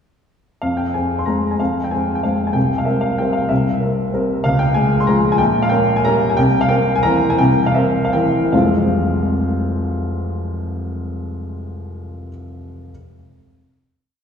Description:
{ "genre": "classical, piano waltz", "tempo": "146-203 BPM", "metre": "3/4", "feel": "rubato", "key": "F minor", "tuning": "A4 = 440 Hz", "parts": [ { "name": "warm upright piano", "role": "solo", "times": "0.6-12.9 s", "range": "F1 to C6", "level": "-16 LUFS", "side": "equal", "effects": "none" } ], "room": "wet church reverb, RT60 2.7 s", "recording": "heard from further back in the room, small room ambience", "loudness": "-15 LUFS", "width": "side -7 dB against mid", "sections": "0.6-8.5 A section; 8.5-10.8 final chord", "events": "slowing down 5.9-8.5", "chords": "0.6 Fm; 2.6 C7; 4.4 Db; 5.4 Gdim/Bb; 6.4 C7; 8.5 Fm" }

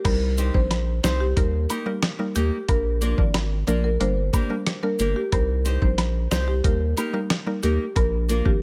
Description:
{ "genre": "dancehall", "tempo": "91 BPM", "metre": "4/4", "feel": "straight", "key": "C minor", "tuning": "A4 = 438 Hz", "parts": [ { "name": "marimba with medium mallets", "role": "melody", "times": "0.0-8.6 s", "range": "G4 to D5", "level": "-31 LUFS", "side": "equal", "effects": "tape echo" }, { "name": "mallet-like synth pluck", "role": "accompaniment", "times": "0.0-8.6 s", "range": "F3 to C5", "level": "-32 LUFS", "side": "equal", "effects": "chorus" }, { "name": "lo-fi sampler-style drum kit", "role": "drums", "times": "0.0-8.6 s", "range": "crash cymbal, hi-hat, kick drum, rim click, snare drum", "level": "-26 LUFS", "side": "equal", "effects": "none" }, { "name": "saturated sub bass", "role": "bass", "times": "0.1-8.6 s", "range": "G1 to Eb2", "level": "-26 LUFS", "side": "equal", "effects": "none" }, { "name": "woodblock and cabasa", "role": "percussion", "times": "0.1-8.4 s", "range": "none", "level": "-37 LUFS", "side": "equal", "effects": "none" }, { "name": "nylon-string guitar", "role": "arpeggios", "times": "0.4-8.5 s", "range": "Bb3 to C5", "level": "-32 LUFS", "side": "equal", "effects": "tape echo" } ], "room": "studio reverb", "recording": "none", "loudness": "-23 LUFS", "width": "mono", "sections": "0.1-8.6 A section", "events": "none", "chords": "0.1 Cm; 1.4 Eb; 2.7 Bb; 4.0 Gm; 5.3 Cm; 6.6 Eb; 8.0 Bb" }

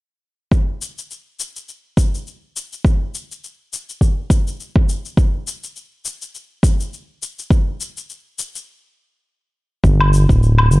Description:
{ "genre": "organic downtempo", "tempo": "103 BPM", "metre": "4/4", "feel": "swing 57% on 16ths", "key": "unclear", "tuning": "A4 = 440 Hz", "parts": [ { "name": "electronic kick drum", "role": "drums", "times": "0.5-10.4 s", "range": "none", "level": "-15 LUFS", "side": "equal", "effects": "overdrive" }, { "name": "shaker and woodblock", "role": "drums", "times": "0.5-10.8 s", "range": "none", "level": "-24 LUFS", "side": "left 2 dB", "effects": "overdrive" }, { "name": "smooth gliding synth bass", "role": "bass", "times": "9.8-10.8 s", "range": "D1 to G1", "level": "-12 LUFS", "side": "equal", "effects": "sidechain pumping" } ], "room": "little or no reverb", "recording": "dark, warm production", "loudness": "-16 LUFS", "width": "side -21 dB against mid", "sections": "0.5-9.8 A section", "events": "stop 8.7-9.8", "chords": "none" }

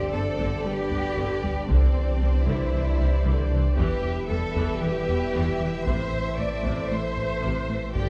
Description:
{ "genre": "cinematic, hybrid orchestral and electronic film score", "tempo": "115 BPM", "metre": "4/4", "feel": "straight", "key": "unclear", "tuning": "A4 = 440 Hz", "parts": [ { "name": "warm symphonic violin section", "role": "melody", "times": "0.0-8.1 s", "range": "D5 to G5", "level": "-41 LUFS", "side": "equal", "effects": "none" }, { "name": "warm symphonic violin section", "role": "second line", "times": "0.0-8.1 s", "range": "B4 to D5", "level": "-40 LUFS", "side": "equal", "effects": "none" }, { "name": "bright trombone section", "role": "sustained chords", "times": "0.0-8.1 s", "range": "D3 to A3", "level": "-39 LUFS", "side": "equal", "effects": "none" }, { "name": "warbly tape-like pad", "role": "sustained chords", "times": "0.2-8.1 s", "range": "D3 to D5", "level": "-40 LUFS", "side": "equal", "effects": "none" }, { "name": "warm French horn section", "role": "sustained chords", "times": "0.0-8.1 s", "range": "B3 to D5", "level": "-38 LUFS", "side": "equal", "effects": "none" }, { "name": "round analog bass", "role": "riff", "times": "0.0-8.1 s", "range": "C2 to A3", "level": "-33 LUFS", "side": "equal", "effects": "none" }, { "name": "saturated sub bass", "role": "bass", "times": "0.0-8.1 s", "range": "E1 to C2", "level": "-31 LUFS", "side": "equal", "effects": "none" }, { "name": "warm symphonic cello section", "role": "bass", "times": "0.0-8.1 s", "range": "C4 to D5", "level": "-33 LUFS", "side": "equal", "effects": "none" }, { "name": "rich studio viola section", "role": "accompaniment", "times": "0.1-8.1 s", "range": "C3 to B3", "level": "-39 LUFS", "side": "equal", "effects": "none" }, { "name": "rich symphonic double bass section", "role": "bass", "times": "0.1-8.0 s", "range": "G1 to E2", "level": "-34 LUFS", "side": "equal", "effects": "none" }, { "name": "taiko ensemble", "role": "drums", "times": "0.4-8.1 s", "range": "none", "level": "-32 LUFS", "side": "equal", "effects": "none" } ], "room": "moderate recital hall reverb, RT60 1.4 s", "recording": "small room ambience", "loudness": "-25 LUFS", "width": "mono", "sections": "0.0-8.1 A section", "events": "none", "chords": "0.0 G; 1.7 Cadd9; 3.8 Em; 5.9 Am" }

